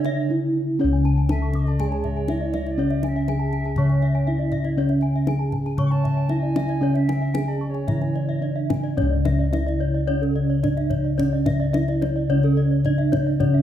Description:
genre	Balinese gamelan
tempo	108-121 BPM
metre	4/4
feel	straight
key	C# pelog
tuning	A4 = 444 Hz
part	gamelan-type bronze metallophone	melody	0.0-13.6 s	C#4 to C#5	-27 LUFS	right 6 dB	none
part	alto recorder	second line	0.0-8.6 s	C#5 to C#6	-36 LUFS	right 5 dB	none
part	gamelan-type bronze metallophone	accompaniment	0.0-13.6 s	C#3 to C#4	-26 LUFS	left 2 dB	none
part	gamelan-type bronze metallophone	arpeggios	0.0-13.6 s	A4-20c to C#6	-35 LUFS	right 6 dB	none
part	gamelan-type bossed gongs	bass	0.0-13.6 s	C#2 to D4+20c	-23 LUFS	left 1 dB	none
part	kendang	percussion	0.0-13.5 s	none	-29 LUFS	left 2 dB	none
part	gamelan-type bronze metallophone	arpeggios	0.1-13.5 s	C#5 to D6+20c	-32 LUFS	left 5 dB	none
room	wet recital hall reverb, RT60 1.5 s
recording	minimal, uncompressed stereo recording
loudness	-19 LUFS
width	side -11 dB against mid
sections	0.8-9.0 A section; 9.0-13.6 B section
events	break 0.0-0.8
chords	none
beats	0.30 | 0.80 1.30 1.79 2.29 | 2.79 3.28 3.78 4.27 | 4.77 5.27 5.78 6.29 | 6.81 7.34 7.87 8.41 | 8.97 9.52 10.08 10.63 | 11.19 11.74 12.30 12.86 | 13.41

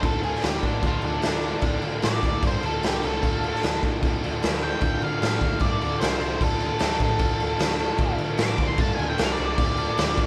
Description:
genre	garage rock duo or trio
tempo	151 BPM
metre	4/4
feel	straight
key	D minor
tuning	A4 = 440 Hz
part	octave-fuzz lead guitar	melody	0.0-10.2 s	D4 to D6	-31 LUFS	equal	distortion
part	combo organ	sustained chords	0.0-10.3 s	F4 to F5	-40 LUFS	equal	none
part	crunchy overdriven guitar	riff	0.0-10.3 s	D3 to A4	-32 LUFS	equal	none
part	hollow-body short-scale picked electric bass	bass	0.0-10.3 s	C2 to D3	-34 LUFS	equal	tube saturation
part	raw garage drum kit	drums	0.0-10.3 s	crash cymbal, kick drum, snare drum	-27 LUFS	equal	none
room	moderate studio ambience, RT60 0.5 s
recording	band playing live in one room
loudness	-24 LUFS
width	mono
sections	0.0-10.3 A section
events	lead electric guitar solo 0.0-10.3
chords	0.0 Dm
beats	| 0.04 0.44 0.84 1.24 | 1.64 2.04 2.44 2.83 | 3.23 3.63 4.03 4.43 | 4.82 5.22 5.62 6.01 | 6.41 6.81 7.20 7.60 | 8.00 8.39 8.79 9.19 | 9.58 9.98

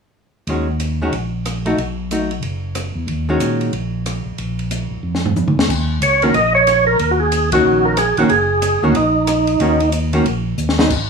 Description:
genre	soul jazz organ trio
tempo	184 BPM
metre	4/4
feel	swing 62% on 8ths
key	Eb minor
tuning	A4 = 440 Hz
part	archtop guitar, miked and amplified	accompaniment	0.5-3.7, 6.2-10.9 s	Eb3 to Gb4	-18 LUFS	equal	none
part	tonewheel organ	bass	0.5-11.1 s	F#1 to Bb2	-21 LUFS	equal	slow rotary speaker
part	compact cocktail drum kit	drums	0.5-11.0 s	crash cymbal, hi-hat, kick drum, ride cymbal, rim click, snare drum, toms	-23 LUFS	equal	none
part	percussive tonewheel organ	melody	6.0-9.9 s	Eb4 to Eb5	-14 LUFS	right 2 dB	slow rotary speaker, overdrive, chorus vibrato
room	moderate studio reverb, RT60 0.6 s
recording	studio ambience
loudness	-15 LUFS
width	side -5 dB against mid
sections	0.5-5.7 A section; 5.7-11.1 B section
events	drum fill 5.0-5.7, 10.6-10.9; band accent 7.5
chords	0.5 Ebm7; 1.8 B7; 3.1 Ebm7; 4.4 Bb5; 5.7 Ebm7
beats	| 0.48 0.81 1.13 1.46 | 1.78 2.11 2.44 2.76 | 3.09 3.41 3.74 4.06 | 4.39 4.72 5.04 5.37 | 5.69 6.02 6.35 6.67 | 7.00 7.32 7.65 7.97 | 8.30 8.63 8.95 9.28 | 9.60 9.93 10.25 10.58 | 10.90

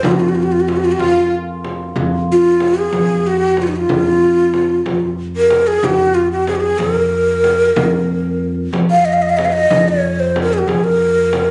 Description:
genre	Persian modal ensemble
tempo	62 BPM (dotted quarters)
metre	6/8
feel	straight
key	F dastgah shur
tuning	A4 = 439 Hz
part	breathy ney	melody	0.0-11.5 s	Eb4 to F5	-16 LUFS	equal	none
part	santur	second line	0.0-4.4 s	F4 to C5	-31 LUFS	equal	none
part	warm studio violin section	second line	0.0-1.3 s	F4	-29 LUFS	equal	none
part	upright bass	bass	0.0-11.5 s	F2	-22 LUFS	equal	none
part	frame drum	percussion	0.0-11.5 s	none	-25 LUFS	equal	none
room	light reverb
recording	recorded on a phone in the room, club reverb, nothing above 10.7 kHz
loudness	-15 LUFS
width	mono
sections	0.0-2.0 A section; 2.0-11.5 B section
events	none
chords	none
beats	| 0.04 1.01 | 1.97 2.93 | 3.90 4.87 | 5.83 6.80 | 7.77 8.74 | 9.71 10.68

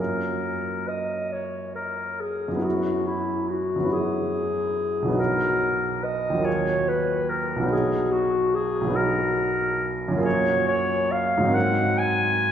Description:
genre	classical, impressionist duo for clarinet and grand piano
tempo	47 BPM (dotted quarters)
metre	6/8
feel	rubato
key	F# major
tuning	A4 = 440 Hz
part	clear clarinet	melody	0.0-12.5 s	E4 to G#5	-24 LUFS	left 2 dB	none
part	clear baby grand piano	accompaniment	0.0-12.5 s	B1 to A#4	-25 LUFS	right 2 dB	none
room	wet concert hall reverb, RT60 2.3 s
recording	heard from further back in the room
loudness	-22 LUFS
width	side -9 dB against mid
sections	0.0-12.5 A section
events	none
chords	0.0 F#maj9; 2.6 Eadd9/F#; 5.2 Bmaj7; 6.5 D#madd9; 7.7 Bmaj7; 10.3 F#maj9; 11.5 G#9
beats	1.33 | 2.65 3.92 | 5.19 6.46 | 7.72 8.97 | 10.25 11.55

